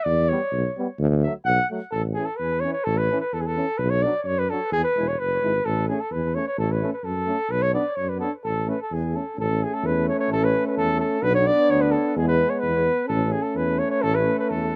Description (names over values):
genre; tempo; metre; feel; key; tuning
balkan folk, Balkan brass band; 129 BPM; 2/4; straight; A major; A4 = 440 Hz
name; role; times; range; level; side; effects
mellow flugelhorn; melody; 0.0-14.8 s; G#4 to F#5; -26 LUFS; equal; slapback echo
mellow tuba; bass; 0.1-14.8 s; E1 to F#2; -28 LUFS; equal; none
mellow euphonium; accompaniment; 0.3-14.8 s; A3 to E4; -30 LUFS; equal; slapback echo
warm trombone; accompaniment; 0.3-14.8 s; E3 to B3; -34 LUFS; equal; none
room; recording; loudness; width
little or no reverb; recorded outdoors, with no room sound; -23 LUFS; mono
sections
0.0-1.9 A section; 1.9-9.4 B section; 9.4-14.8 B section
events
flugelhorn solo 0.0-1.9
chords
0.1 Em; 1.0 D; 1.9 A; 3.8 Bm; 4.7 E; 5.7 A; 7.5 Bm; 8.4 A; 11.2 Bm; 12.2 E; 13.1 A